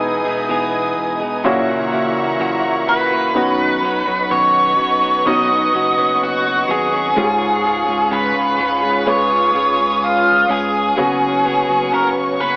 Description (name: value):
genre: pop ballad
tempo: 63 BPM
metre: 4/4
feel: straight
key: B lydian from 3.4 s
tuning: A4 = 442 Hz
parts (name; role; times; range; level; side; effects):
- warm grand piano; accompaniment; 0.0-12.6 s; G#2 to B4; -21 LUFS; equal; none
- warm studio string section; sustained chords; 0.0-12.6 s; B3 to D#6; -22 LUFS; equal; none
- direct-recorded clean electric guitar; arpeggios; 0.0-12.6 s; F#2 to G#4; -23 LUFS; equal; none
- saturated sub bass; bass; 0.0-12.6 s; E1 to C#2; -30 LUFS; equal; none
- octave-fuzz lead guitar; melody; 2.9-12.6 s; E#4 to D#5; -15 LUFS; equal; distortion, tape echo
room: moderate plate reverb, RT60 3.2 s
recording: AM radio sound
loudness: -14 LUFS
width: side -26 dB against mid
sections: 0.0-3.4 A section; 3.4-12.6 B section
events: none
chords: 0.0 Emaj7; 1.4 F#7; 3.4 Badd9; 7.2 C#; 11.0 F#sus4